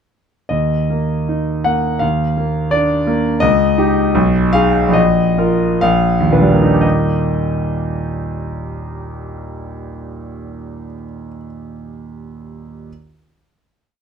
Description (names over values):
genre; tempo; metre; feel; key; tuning
classical, romantic character piece for solo piano; 57-86 BPM; 2/4; rubato; unclear; A4 = 437 Hz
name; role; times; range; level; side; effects
clear concert grand piano; solo; 0.5-12.9 s; Bb1 to Gb5; -15 LUFS; equal; none
room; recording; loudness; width
light reverb; dark, warm production; -13 LUFS; side -7 dB against mid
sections
0.5-6.8 A section; 6.8-10.7 final chord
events
slowing down 2.7-6.8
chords
0.5 Eb5; 2.0 Bb/Eb; 3.4 Eb7/Db; 4.2 Abm/Cb; 5.0 Bbsus4; 5.8 Bb; 6.8 Eb